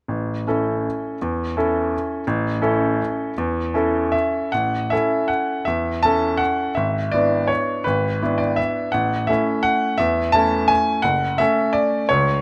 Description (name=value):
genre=classical, piano waltz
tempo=142-184 BPM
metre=3/4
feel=rubato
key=A major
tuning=A4 = 443 Hz
part: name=clear baby grand piano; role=solo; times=0.1-12.4 s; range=F#1 to A5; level=-20 LUFS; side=equal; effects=none
room=light reverb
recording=close, detailed microphones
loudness=-21 LUFS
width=mono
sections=0.1-4.5 A section; 4.5-12.4 B section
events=none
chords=0.1 A; 6.8 E7/G#; 8.9 A; 11.1 F#m